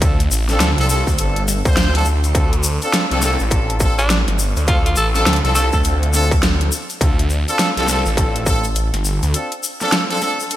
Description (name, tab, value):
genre	glitch hop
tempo	103 BPM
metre	4/4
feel	swing 62% on 16ths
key	D minor pentatonic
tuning	A4 = 440 Hz
part	bright horn section	stabs	0.0-10.6 s	C4 to C5	-22 LUFS	equal	sidechain pumping, digital delay
part	phased detuned saw bass	bass	0.0-9.3 s	G1 to D2	-18 LUFS	equal	phaser
part	dubstep drum kit	drums	0.0-10.6 s	hi-hat, snare drum	-21 LUFS	equal	small room ambience, gated reverb
part	electronic kick drum	drums	0.0-8.6 s	none	-18 LUFS	equal	distortion, small room ambience
part	egg shaker	percussion	0.0-10.6 s	none	-26 LUFS	left 4 dB	none
part	growling tenor saxophone	melody	4.0-5.8 s	D4 to A4	-22 LUFS	equal	vintage 12-bit sampler grit, digital delay
room	light reverb, studio reverb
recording	bright 1980s-style digital production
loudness	-14 LUFS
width	side -13 dB against mid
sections	0.0-10.6 A section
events	none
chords	0.0 Dm7